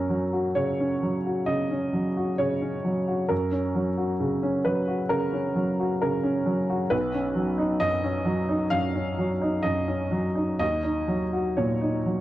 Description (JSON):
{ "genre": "neoclassical minimalist piano", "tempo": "66 BPM", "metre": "4/4", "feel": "rubato", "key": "F# major", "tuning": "A4 = 439 Hz", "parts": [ { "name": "clear upright piano", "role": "solo", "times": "0.0-12.2 s", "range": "B1 to E#5", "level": "-23 LUFS", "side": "equal", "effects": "slapback echo" } ], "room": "small room ambience", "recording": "dry, close 1970s-style studio recording", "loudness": "-23 LUFS", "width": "side -14 dB against mid", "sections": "0.0-12.2 A section", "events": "none", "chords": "0.0 F#; 6.9 Badd9; 10.6 D#m7" }